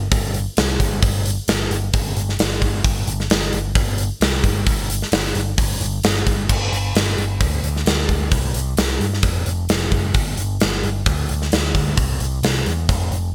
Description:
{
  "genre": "hard rock",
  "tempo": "131 BPM",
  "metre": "4/4",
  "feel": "straight",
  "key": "unclear",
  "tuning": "A4 = 439 Hz",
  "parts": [
    { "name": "overdriven picked electric bass", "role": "bass", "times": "0.0-13.3 s", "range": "F1 to G2", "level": "-24 LUFS", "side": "equal", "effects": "none" },
    { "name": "gated 80s drum kit", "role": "drums", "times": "0.1-13.2 s", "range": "crash cymbal, hi-hat, kick drum, snare drum", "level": "-22 LUFS", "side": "equal", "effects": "none" }
  ],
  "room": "light reverb",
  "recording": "bright 1980s-style digital production",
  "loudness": "-20 LUFS",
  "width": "mono",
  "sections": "0.0-6.5 A section; 6.5-13.3 B section",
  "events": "none",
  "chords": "none"
}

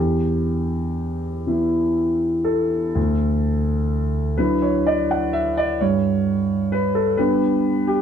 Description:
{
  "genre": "neoclassical minimalist piano",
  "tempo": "39-44 BPM (dotted quarters)",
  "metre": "6/8",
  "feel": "rubato",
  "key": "D major",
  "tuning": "A4 = 445 Hz",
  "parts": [
    { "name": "warm concert grand piano", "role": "solo", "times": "0.0-8.0 s", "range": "D2 to F#5", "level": "-18 LUFS", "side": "equal", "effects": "none" }
  ],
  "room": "light reverb",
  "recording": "dark, warm production",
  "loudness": "-18 LUFS",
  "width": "side -8 dB against mid",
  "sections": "0.0-3.0 A section; 3.0-8.0 A section",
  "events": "none",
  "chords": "0.0 Em; 3.0 Dadd9; 5.8 G"
}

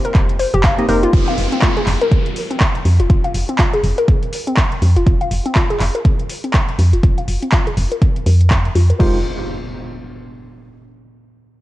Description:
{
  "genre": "deep house",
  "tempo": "122 BPM",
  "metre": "4/4",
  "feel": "swing 59% on 16ths",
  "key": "F minor",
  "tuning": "A4 = 441 Hz",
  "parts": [
    { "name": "warbly dusty pluck", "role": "arpeggios", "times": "0.0-9.2 s", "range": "C4 to F5", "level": "-21 LUFS", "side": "left 2 dB", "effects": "chorus, sidechain pumping, analog delay" },
    { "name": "percussive organ stab", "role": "stabs", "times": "0.0-1.1, 9.0-9.2 s", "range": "Ab3 to Eb5", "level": "-22 LUFS", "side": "right 1 dB", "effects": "chorus, analog delay" },
    { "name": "deep house drum kit", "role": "drums", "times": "0.0-9.1 s", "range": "crash cymbal, handclaps, hi-hat", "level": "-23 LUFS", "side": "equal", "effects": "overdrive, vintage 12-bit sampler grit" },
    { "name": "woody FM bass", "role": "bass", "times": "0.1-9.2 s", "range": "F1 to F2", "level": "-15 LUFS", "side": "equal", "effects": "sidechain pumping" },
    { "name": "electronic kick drum", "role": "drums", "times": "0.1-9.1 s", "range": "none", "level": "-15 LUFS", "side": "equal", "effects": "overdrive, vintage 12-bit sampler grit" },
    { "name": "downlifter and impact", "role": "sound effects", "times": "1.1-5.1, 9.0-11.0 s", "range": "none", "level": "-28 LUFS", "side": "right 1 dB", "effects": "none" }
  ],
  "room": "digital ambience",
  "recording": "cassette tape",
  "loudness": "-13 LUFS",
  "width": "side -16 dB against mid",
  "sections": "0.0-1.1 A section; 1.1-9.0 B section; 9.0-11.0 C section",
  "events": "drop 0.0-1.1; filter sweep on FM bass 1.1-9.0; filter sweep on synth pluck 1.1-9.0",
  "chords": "0.0 Cm7/F; 1.1 F5; 9.0 Fm9"
}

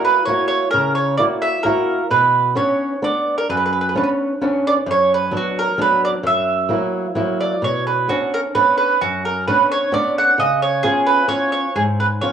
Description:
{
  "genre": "italian folk, Italian serenade",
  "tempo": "131 BPM",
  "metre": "3/4",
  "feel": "straight",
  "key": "B harmonic minor",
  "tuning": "A4 = 441 Hz",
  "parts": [
    { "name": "mandolin", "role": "melody", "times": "0.0-12.3 s", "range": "F#4 to F#5", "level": "-17 LUFS", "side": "right 3 dB", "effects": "cassette tape" },
    { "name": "flamenco guitar", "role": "accompaniment", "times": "0.0-12.3 s", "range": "F#2 to F#4", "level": "-21 LUFS", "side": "equal", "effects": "cassette tape" }
  ],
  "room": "moderate spring reverb, RT60 1.6 s",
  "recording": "home recording on cassette, small room ambience",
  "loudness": "-15 LUFS",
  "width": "side -8 dB against mid",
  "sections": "0.0-12.3 A section",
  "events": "none",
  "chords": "0.0 F#7; 2.1 Bmadd9; 4.9 Bm/F#; 6.2 F#7; 7.6 Bmadd9; 10.4 C#7"
}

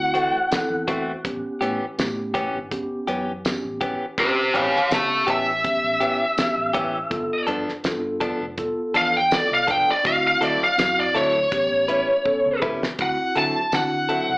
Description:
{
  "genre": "straight-eighth soul blues",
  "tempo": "82 BPM",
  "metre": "4/4",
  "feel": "swing 55% on 16ths",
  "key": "unclear",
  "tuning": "A4 = 440 Hz",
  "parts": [
    { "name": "lead guitar through a small cranked amp", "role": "melody", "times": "0.0-14.4 s", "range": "G4 to A5", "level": "-20 LUFS", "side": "equal", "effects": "overdrive, slapback echo" },
    { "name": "mellow tine electric piano", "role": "accompaniment", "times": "0.0-14.3 s", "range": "B2 to A4", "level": "-29 LUFS", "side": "equal", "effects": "medium stereo tremolo, slapback echo" },
    { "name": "vintage muted fingered electric bass", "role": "bass", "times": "0.0-14.4 s", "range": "F1 to D3", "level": "-35 LUFS", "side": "equal", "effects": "none" },
    { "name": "direct-recorded clean electric guitar", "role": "stabs", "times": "0.1-14.3 s", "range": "E3 to B4", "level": "-25 LUFS", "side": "left 1 dB", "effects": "slapback echo" },
    { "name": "damped 70s drum kit", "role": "drums", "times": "0.1-14.3 s", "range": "hi-hat, kick drum, snare drum, tambourine", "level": "-26 LUFS", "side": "equal", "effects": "none" }
  ],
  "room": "light reverb",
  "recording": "live gig heard through the venue's PA, club reverb, AM radio sound",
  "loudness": "-19 LUFS",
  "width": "side -24 dB against mid",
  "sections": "0.0-13.0 A section; 13.0-14.4 B section",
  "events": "lead electric guitar solo 0.0-13.0; drum fill 12.3-13.0",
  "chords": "0.0 D9; 1.2 A9; 7.1 G9; 10.1 D9; 11.5 A9; 13.0 D9"
}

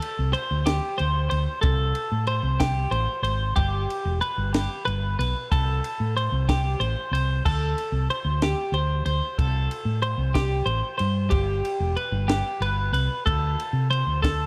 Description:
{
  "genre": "math rock and midwest emo",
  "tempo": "62 BPM (dotted quarters)",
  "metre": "6/8",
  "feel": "straight",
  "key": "unclear",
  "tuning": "A4 = 441 Hz",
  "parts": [
    { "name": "twelve-string electric guitar", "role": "arpeggios", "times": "0.0-14.5 s", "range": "G4 to C5", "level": "-29 LUFS", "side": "equal", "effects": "spring reverb" },
    { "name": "compact cocktail drum kit", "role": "drums", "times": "0.0-14.4 s", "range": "crash cymbal, kick drum, ride cymbal, snare drum", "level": "-32 LUFS", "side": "equal", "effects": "none" },
    { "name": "hollow-body short-scale fingered electric bass", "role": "bass", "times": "0.2-14.5 s", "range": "E1 to C3", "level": "-27 LUFS", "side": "equal", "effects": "none" }
  ],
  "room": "little or no reverb",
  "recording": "dark, warm production",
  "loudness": "-25 LUFS",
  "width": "mono",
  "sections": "0.0-14.5 A section",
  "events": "none",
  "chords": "0.0 D7sus4; 1.6 C5; 3.6 G; 5.5 C5; 7.4 D7sus4; 9.4 C5; 11.3 G; 13.3 D5"
}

